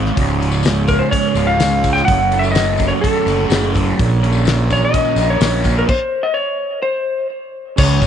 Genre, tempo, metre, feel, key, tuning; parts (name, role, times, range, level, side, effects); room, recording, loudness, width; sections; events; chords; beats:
psychedelic rock; 126 BPM; 4/4; straight; A4 = 445 Hz
fuzz guitar; riff; 0.0-8.1 s; Db2 to Bb4; -19 LUFS; right 1 dB; distortion, phaser
fuzz fingered electric bass; bass; 0.0-8.1 s; Db1 to Db2; -18 LUFS; right 1 dB; overdrive
overdriven combo organ; sustained chords; 0.1-8.1 s; F3 to Db5; -26 LUFS; right 14 dB
damped 70s drum kit; drums; 0.1-8.1 s; crash cymbal, hi-hat, kick drum, snare drum; -19 LUFS; left 2 dB
tambourine; percussion; 0.3-8.1 s; -34 LUFS; left 12 dB
electric slide guitar; melody; 0.9-8.1 s; A4 to G5; -18 LUFS; left 1 dB; tape echo
light reverb, studio reverb; 1960s-style stereo with parts hard left and right, nothing above 10.5 kHz; -13 LUFS; side -9 dB against mid
0.0-7.8 A section
stop 5.9-7.8
0.2 Db; 2.1 Gbm; 4.0 Bbm; 5.9 N.C.
| 0.17 0.64 1.12 1.60 | 2.07 2.55 3.02 3.50 | 3.97 4.45 4.92 5.40 | 5.87 6.35 6.82 7.30 | 7.77